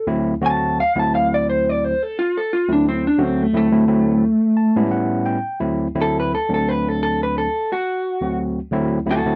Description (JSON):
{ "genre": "blues", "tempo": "87 BPM", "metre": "4/4", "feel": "swing 55% on 16ths", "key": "D mixolydian", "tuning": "A4 = 440 Hz", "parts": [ { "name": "electric guitar through a small old amp", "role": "melody", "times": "0.0-9.4 s", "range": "A3 to A5", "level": "-20 LUFS", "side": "equal", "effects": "none" }, { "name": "overdriven tine electric piano", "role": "accompaniment", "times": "0.1-9.4 s", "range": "D2 to A5", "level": "-23 LUFS", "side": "equal", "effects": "none" } ], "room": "light reverb", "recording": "dry, close 1970s-style studio recording", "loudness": "-19 LUFS", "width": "mono", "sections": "0.0-5.6 A section; 5.6-9.4 A section", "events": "clean electric guitar solo 0.0-5.6, 5.6-9.4; tine electric piano fill 4.2-5.6", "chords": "0.1 D9; 4.2 A9; 5.6 D9", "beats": "| 0.09 0.78 1.47 2.16 | 2.86 3.55 4.24 4.93 | 5.62 6.31 7.00 7.70 | 8.39 9.08" }